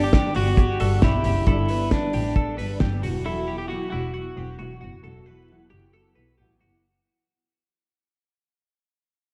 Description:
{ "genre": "jangly indie pop", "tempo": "134 BPM", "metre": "4/4", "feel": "straight", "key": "unclear", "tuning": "A4 = 440 Hz", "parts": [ { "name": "electric guitar at the edge of break-up", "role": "melody", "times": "0.0-6.3 s", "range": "D4 to G4", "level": "-30 LUFS", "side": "equal", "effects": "diffuse ambient delay" }, { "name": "fingerpicked steel-string acoustic guitar", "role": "accompaniment", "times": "0.0-6.8 s", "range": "E2 to G4", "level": "-34 LUFS", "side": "equal", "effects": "ensemble chorus" }, { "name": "twelve-string electric guitar", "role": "arpeggios", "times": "0.0-6.8 s", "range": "E4 to B4", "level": "-36 LUFS", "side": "equal", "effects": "spring reverb" }, { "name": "bright double bass", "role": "bass", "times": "0.0-6.8 s", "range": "E1 to B1", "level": "-29 LUFS", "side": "equal", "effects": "none" }, { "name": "cloth-damped thuddy drum kit", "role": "drums", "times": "0.1-3.1 s", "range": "hi-hat, kick drum, snare drum", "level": "-24 LUFS", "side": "equal", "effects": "none" } ], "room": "moderate lush hall reverb, RT60 1.9 s, small room ambience", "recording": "dreamy mix soaked in reverb, vinyl crackle", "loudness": "-23 LUFS", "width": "mono", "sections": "0.0-6.8 A section", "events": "fade-out 0.0-6.8", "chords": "0.0 Gadd9; 3.0 Esus2" }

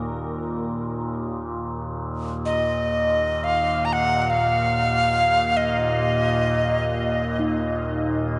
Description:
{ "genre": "world meditative, free-time meditation music", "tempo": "free time", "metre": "none", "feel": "none", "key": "unclear", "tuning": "A4 = 440 Hz", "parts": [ { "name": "overtone-sweeping drone", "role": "drone", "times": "0.0-8.4 s", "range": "Eb2 to Bb2", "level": "-28 LUFS", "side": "equal", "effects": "chorus, built-in reverb" }, { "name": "breathy bright alto recorder", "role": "melody", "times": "2.5-7.4 s", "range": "Eb5 to Bb5", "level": "-24 LUFS", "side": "equal", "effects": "shimmer reverb" }, { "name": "quartz singing bowl", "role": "texture", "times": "7.4-8.4 s", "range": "Eb4", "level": "-29 LUFS", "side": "equal", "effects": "shimmer reverb" } ], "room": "wet huge ambient reverb, RT60 9.1 s", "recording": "in a vast, echoing space, nothing above 10.8 kHz", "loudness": "-23 LUFS", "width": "mono", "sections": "0.0-8.4 A section", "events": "none", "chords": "none" }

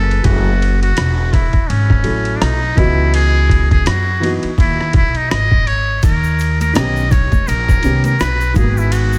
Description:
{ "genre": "hip hop, jazz-hop", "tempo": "83 BPM", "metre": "4/4", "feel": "swing 59% on 16ths", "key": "F# dorian", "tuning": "A4 = 440 Hz", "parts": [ { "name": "trumpet with metal mute", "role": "melody", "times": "0.0-9.2 s", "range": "C#4 to D#5", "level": "-21 LUFS", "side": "equal", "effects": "dub echo" }, { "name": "upright bass", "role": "bass", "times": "0.0-9.2 s", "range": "E1 to F#2", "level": "-18 LUFS", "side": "equal", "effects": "none" }, { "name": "trip hop sampler-style drum kit", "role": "drums", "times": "0.1-9.1 s", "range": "hi-hat, kick drum, ride cymbal, rim click", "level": "-19 LUFS", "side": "equal", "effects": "none" }, { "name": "dark grand piano", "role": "accompaniment", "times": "0.2-9.2 s", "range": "D#3 to D#5", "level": "-24 LUFS", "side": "equal", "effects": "dub echo" }, { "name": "tube shaker and congas", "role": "percussion", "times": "6.0-9.2 s", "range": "none", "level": "-31 LUFS", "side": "equal", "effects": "none" } ], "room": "small room ambience", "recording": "echo-heavy mix", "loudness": "-15 LUFS", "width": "mono", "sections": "0.2-9.2 A section", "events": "none", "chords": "0.2 F#m9; 2.8 C#m11; 6.0 D#7b13; 8.6 G#m7" }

